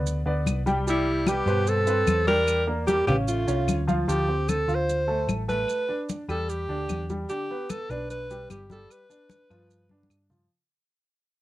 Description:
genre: Afro-Cuban jazz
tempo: 149 BPM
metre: 4/4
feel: straight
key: unclear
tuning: A4 = 440 Hz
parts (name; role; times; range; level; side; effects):
- warm baby grand piano; accompaniment; 0.0-10.5 s; B2 to G5; -30 LUFS; right 1 dB; none
- hollow-body short-scale picked electric bass; bass; 0.0-10.5 s; G1 to G2; -28 LUFS; equal; none
- congas; percussion; 0.1-10.4 s; none; -31 LUFS; left 2 dB; none
- maracas; percussion; 0.1-10.5 s; none; -41 LUFS; right 7 dB; none
- claves; percussion; 0.5-10.3 s; none; -39 LUFS; left 7 dB; none
- clear alto saxophone; melody; 0.9-10.1 s; E4 to C5; -26 LUFS; right 1 dB; cassette tape
- growling tenor saxophone; second line; 0.9-3.9 s; G3 to D4; -34 LUFS; left 3 dB; none
room: light reverb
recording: home recording on cassette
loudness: -23 LUFS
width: side -15 dB against mid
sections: 0.0-4.1 A section; 4.1-10.5 B section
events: fade-out 4.1-10.5; drum fill 9.9-10.5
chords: 0.0 G; 0.9 Cmaj7; 2.5 Em7b5; 3.3 Aaug; 4.1 Dm7; 5.7 A9sus4; 7.3 Gadd9; 8.9 G7

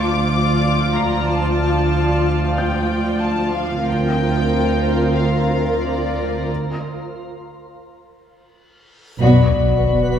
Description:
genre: cinematic, suspense film score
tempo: free time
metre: none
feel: none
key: unclear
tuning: A4 = 440 Hz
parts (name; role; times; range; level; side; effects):
- warm studio violin section; melody; 0.0-10.2 s; D5 to D6; -26 LUFS; left 3 dB; none
- warm studio violin section; second line; 0.0-10.2 s; F4 to D5; -25 LUFS; left 2 dB; none
- dark studio viola section; accompaniment; 0.0-10.2 s; F3 to F4; -24 LUFS; equal; none
- twinkling granular texture; sustained chords; 0.0-10.2 s; F4 to F#5; -27 LUFS; equal; built-in reverb
- dark studio cello section; bass; 0.0-10.2 s; D2 to B2; -24 LUFS; right 2 dB; none
- rich studio double bass section; bass; 0.0-10.2 s; B1 to D2; -21 LUFS; right 1 dB; none
- felt-muted upright piano; texture; 0.0-6.5 s; G6 to C7; -36 LUFS; left 2 dB; none
- reverse cymbal and sub drop; sound effects; 9.2-10.2 s; none; -23 LUFS; left 1 dB; none
- mellow French horn section; sustained chords; 9.2-10.2 s; D5; -20 LUFS; left 7 dB; none
- mellow trombone section; sustained chords; 9.2-10.2 s; F#3 to B3; -23 LUFS; right 3 dB; none
room: wet scoring stage reverb, RT60 2.0 s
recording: heard from further back in the room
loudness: -16 LUFS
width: side -9 dB against mid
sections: 0.0-9.2 A section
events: break 6.5-9.2; reverse cymbal 9.2; band accent 9.2-9.9; impact 9.2-10.2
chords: 0.0 Dm; 3.9 Bbsus2/D; 6.5 N.C.; 9.2 Bm

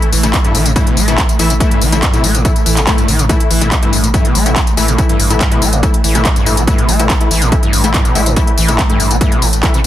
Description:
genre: driving peak-time techno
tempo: 142 BPM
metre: 4/4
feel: straight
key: A minor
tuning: A4 = 439 Hz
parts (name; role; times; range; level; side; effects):
- rave stab; stabs; 0.0-9.7 s; E3 to E4; -19 LUFS; left 3 dB; chorus, built-in reverb, sidechain pumping, dub echo
- swarming drone; drone; 0.0-9.9 s; A2 to A3; -23 LUFS; equal; built-in reverb, sidechain pumping
- techno drum kit; drums; 0.0-9.9 s; handclaps, hi-hat, tambourine; -17 LUFS; left 1 dB; overdrive, sidechain pumping on hats, sidechain pumping on perc
- screaming distorted acid line; riff; 0.1-9.9 s; G2 to A3; -18 LUFS; equal; distortion, lush chorus, vintage 12-bit sampler grit, sidechain pumping, dub echo
- warm sub bass; bass; 0.1-9.9 s; A1; -16 LUFS; equal; overdrive, sidechain pumping, low-pass filter
- electronic kick drum; drums; 0.3-9.7 s; none; -14 LUFS; equal; overdrive
- swell; sound effects; 2.6-3.3 s; none; -23 LUFS; equal; none
room: light reverb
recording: dense, heavily limited modern master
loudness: -10 LUFS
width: side -12 dB against mid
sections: 0.0-9.9 A section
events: swell 2.6-3.3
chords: 0.0 A5

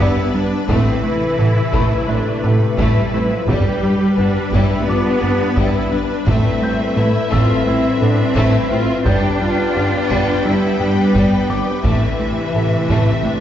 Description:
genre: cinematic, hybrid orchestral and electronic film score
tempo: 86 BPM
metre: 4/4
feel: straight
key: A minor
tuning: A4 = 440 Hz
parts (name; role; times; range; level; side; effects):
- rich symphonic violin section; melody; 0.0-13.4 s; B4 to G5; -27 LUFS; left 4 dB; none
- bright symphonic violin section; second line; 0.0-13.4 s; G3 to B4; -26 LUFS; left 2 dB; none
- clear symphonic viola section; accompaniment; 0.0-13.4 s; C3 to G4; -25 LUFS; right 1 dB; none
- hollow soft pad; sustained chords; 0.0-13.4 s; C3 to E5; -25 LUFS; left 1 dB; chorus
- mellow French horn section; sustained chords; 0.0-13.4 s; C3 to B4; -26 LUFS; left 3 dB; none
- thumb-piano-like synth pluck; arpeggios; 0.0-13.4 s; G3 to A4; -28 LUFS; left 3 dB; none
- rubbery square bass; riff; 0.0-13.4 s; G2 to A3; -21 LUFS; right 1 dB; none
- clear symphonic double bass section; bass; 0.0-13.3 s; G1 to A1; -22 LUFS; right 1 dB; none
- rich symphonic cello section; bass; 0.0-13.4 s; E3 to D4; -20 LUFS; equal; none
- felt-muted upright piano; texture; 0.0-13.4 s; F4 to G6; -30 LUFS; left 1 dB; none
- taiko ensemble; drums; 0.7-13.4 s; none; -23 LUFS; equal; none
room: wet scoring stage reverb, RT60 1.7 s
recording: heard from further back in the room, nothing above 7.7 kHz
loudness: -14 LUFS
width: side -10 dB against mid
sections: 0.0-13.4 A section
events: none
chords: 0.0 G; 0.7 Amadd9; 3.5 G; 6.3 Amadd9; 9.1 G; 11.8 Amadd9

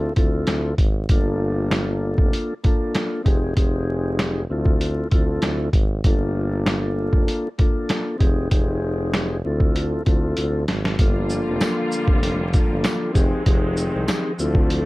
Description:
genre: hip hop, boom-bap hip-hop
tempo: 97 BPM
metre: 4/4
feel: swing 55% on 16ths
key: G minor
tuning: A4 = 440 Hz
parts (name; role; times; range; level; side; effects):
- mellow tonewheel organ; accompaniment; 0.0-14.9 s; Bb3 to A4; -24 LUFS; left 1 dB; slow rotary speaker, high-pass filter, low-pass filter
- warm tuba; bass; 0.0-14.9 s; F1 to D2; -25 LUFS; equal; none
- boom bap sampler-style drum kit; drums; 0.2-14.9 s; hi-hat, kick drum, shaker, snare drum; -19 LUFS; equal; none
- rich studio string section; sustained chords; 11.0-14.9 s; D3 to F4; -28 LUFS; equal; high-pass filter, low-pass filter
- tambourine; percussion; 11.6-14.2 s; none; -40 LUFS; right 6 dB; none
room: little or no reverb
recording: vinyl crackle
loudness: -18 LUFS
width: side -20 dB against mid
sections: 0.0-11.0 A section; 11.0-14.9 B section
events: drum fill 10.4-11.0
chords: 0.0 Dm7; 1.1 Gm7; 3.3 Fm7; 4.5 Dm7; 6.0 Gm7; 8.2 Fm7; 9.4 Dm7; 11.0 Gm7; 13.2 Fm7

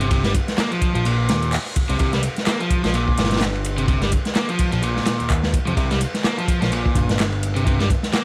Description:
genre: breakbeat, breaks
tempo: 127 BPM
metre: 4/4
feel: swing 57% on 16ths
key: C minor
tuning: A4 = 444 Hz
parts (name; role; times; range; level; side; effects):
- crunchy overdriven guitar; riff; 0.0-8.2 s; Bb2 to Bb3; -26 LUFS; equal; vintage 12-bit sampler grit, delay
- fat analog bass; bass; 0.0-8.0 s; G1 to F2; -25 LUFS; equal; none
- crunchy breakbeat drum kit; drums; 0.0-8.2 s; hi-hat, kick drum, ride cymbal, snare drum; -24 LUFS; equal; none
- garage drum kit; drums; 0.0-8.2 s; handclaps, hi-hat; -32 LUFS; equal; none
- downlifter; sound effects; 0.0-2.0 s; none; barely audible; none; none
room: little or no reverb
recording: vinyl crackle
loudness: -20 LUFS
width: mono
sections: 0.0-8.2 A section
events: none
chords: 0.0 Cm7

